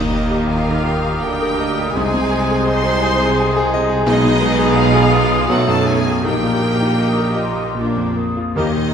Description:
classical; 76-88 BPM; 3/4; rubato; Eb major; A4 = 439 Hz
clear concert grand piano; melody; 0.0-8.9 s; Bb1 to Eb6; -19 LUFS; left 2 dB
rich chamber violin section; melody; 0.0-8.9 s; Eb5 to C6; -26 LUFS; left 2 dB
clear clarinet; second line; 0.0-8.7 s; F4 to A4; -28 LUFS; left 2 dB
mellow hollow flute section; second line; 0.0-8.6 s; C6 to Eb6; -26 LUFS; left 1 dB
rich chamber violin section; second line; 0.0-8.7 s; G3 to Eb4; -27 LUFS; left 2 dB
warm cor anglais; second line; 0.0-8.7 s; Bb4 to C5; -27 LUFS; equal
mellow bassoon; accompaniment; 0.0-8.7 s; F#3 to Bb3; -26 LUFS; right 1 dB
rich chamber viola section; accompaniment; 0.0-8.9 s; Eb4 to C5; -26 LUFS; right 2 dB
mellow French horn section; sustained chords; 0.0-8.8 s; Ab3 to G4; -26 LUFS; left 6 dB
clear chamber double bass section; bass; 0.0-8.9 s; Bb1 to Eb2; -25 LUFS; right 5 dB
mellow tuba; bass; 0.0-8.9 s; Bb1 to Eb2; -25 LUFS; right 3 dB
rich symphonic cello section; bass; 0.0-8.9 s; Bb2 to Eb3; -24 LUFS; right 4 dB
timpani; percussion; 0.0-0.8, 8.6-8.9 s; Eb3; -30 LUFS; left 2 dB
wet scoring stage reverb, RT60 1.5 s; -14 LUFS; side -7 dB against mid
0.0-8.9 A section
0.0 Eb; 2.0 Ab/C; 4.1 Abm/Cb; 5.5 B7; 6.3 Eb/Bb; 7.8 Bb

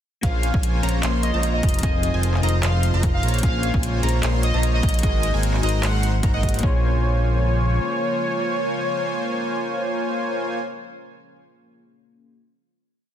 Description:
future bass; 150 BPM; 4/4; swing 54% on 16ths, half-time; Bb minor; A4 = 440 Hz
warm velvety synth lead; melody; 0.2-10.6 s; Db5 to Gb5; -28 LUFS; equal; chorus, sidechain pumping, ping-pong delay
glassy digital keys; accompaniment; 0.2-12.4 s; Bb3 to C6; -33 LUFS; left 4 dB; chorus, sidechain pumping, ping-pong delay
airy breathy pad; sustained chords; 0.8-10.6 s; Db3 to Gb4; -34 LUFS; equal; chorus, sidechain pumping
wide unison pluck; arpeggios; 0.2-11.3 s; Gb5 to C6; -35 LUFS; right 1 dB; sidechain pumping, ping-pong delay
soft supersaw; riff; 0.2-10.6 s; F3 to C6; -27 LUFS; equal; sidechain pumping
fat analog bass; bass; 0.2-7.8 s; F1 to Bb1; -21 LUFS; equal; sidechain pumping
electronic kick drum; drums; 0.2-6.7 s; -22 LUFS; equal; overdrive
trap drum kit; drums; 0.2-6.7 s; handclaps, hi-hat; -29 LUFS; equal
little or no reverb; dense, heavily limited modern master; -19 LUFS; side -10 dB against mid
0.2-6.6 drop; 6.6-9.8 final chord
drop 0.2-6.6
0.2 Bbm7; 1.6 Fm7; 3.2 Bbm7; 5.0 Ab7; 6.6 Bbm7

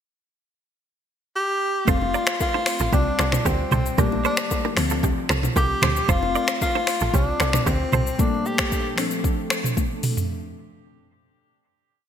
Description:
afrobeats; 114 BPM; 4/4; straight; D minor; A4 = 441 Hz
breathy tenor saxophone; melody; 1.4-9.0 s; C4 to G4; -26 LUFS; left 1 dB; ping-pong delay
glassy digital keys; accompaniment; 1.9-10.3 s; Bb2 to A4; -28 LUFS; left 4 dB; chorus
direct-recorded clean electric guitar; riff; 1.9-8.0 s; C4 to D5; -29 LUFS; right 9 dB; analog chorus, ping-pong delay
woody log drum bass; bass; 1.9-8.1 s; F1 to D2; -25 LUFS; right 1 dB
afro-pop drum kit; drums; 1.9-10.3 s; finger snaps, hi-hat, kick drum, rim click, shaker, toms; -23 LUFS; equal; gated reverb
congas and bongos; percussion; 1.9-8.1 s; -32 LUFS; left 6 dB
moderate lush hall reverb, RT60 1.8 s, digital ambience; bright 1980s-style digital production; -20 LUFS; side -9 dB against mid
0.0-1.9 pickup bar; 1.9-10.3 chorus
drum fill 9.8-10.3
0.0 N.C.; 1.9 F; 2.9 Csus4; 4.0 Gmadd9/Bb; 4.8 Dm7; 6.1 F; 7.1 Csus4; 8.2 Gmadd9/Bb; 9.0 Dm7

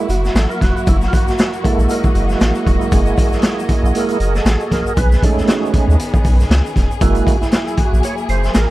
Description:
funk; 117 BPM; 4/4; swing 56% on 16ths; F# mixolydian; A4 = 440 Hz
warm studio string section; sustained chords; 0.0-8.7 s; D#3 to D#5; -23 LUFS; left 2 dB
percussive tonewheel organ; stabs; 0.0-8.7 s; G#3 to C#5; -20 LUFS; right 4 dB; overdrive, chorus vibrato, slow rotary speaker
round analog bass; bass; 0.1-8.7 s; E1 to D#2; -16 LUFS; equal
raw garage drum kit; drums; 0.1-8.7 s; hi-hat, kick drum, snare drum; -16 LUFS; equal
tube shaker; percussion; 0.1-8.7 s; -39 LUFS; left 6 dB
little or no reverb; dry, close 1970s-style studio recording; -13 LUFS; side -17 dB against mid
0.0-8.7 A section
tonewheel organ solo 0.0-8.7
0.0 F#9; 5.0 B13; 7.0 F#9

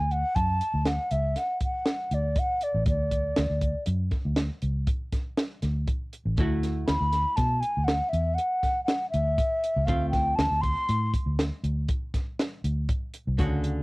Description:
progressive instrumental, band music in an uneven meter; 120 BPM; 7/4; straight; A4 = 437 Hz
mellow baroque flute; melody; 0.0-11.1 s; D5 to C6; -27 LUFS; equal; cassette tape, plate reverb
vintage muted fingered electric bass; bass; 0.0-13.8 s; A1 to B2; -27 LUFS; equal
compact cocktail drum kit; drums; 0.1-13.8 s; hi-hat, kick drum, snare drum; -28 LUFS; equal; cassette tape
archtop guitar, miked and amplified; accompaniment; 6.4-13.8 s; C#3 to F#4; -33 LUFS; equal
light reverb; home recording on cassette; -24 LUFS; side -24 dB against mid
0.0-13.8 A section
0.0 D; 6.4 F#m7/D; 9.9 F/D

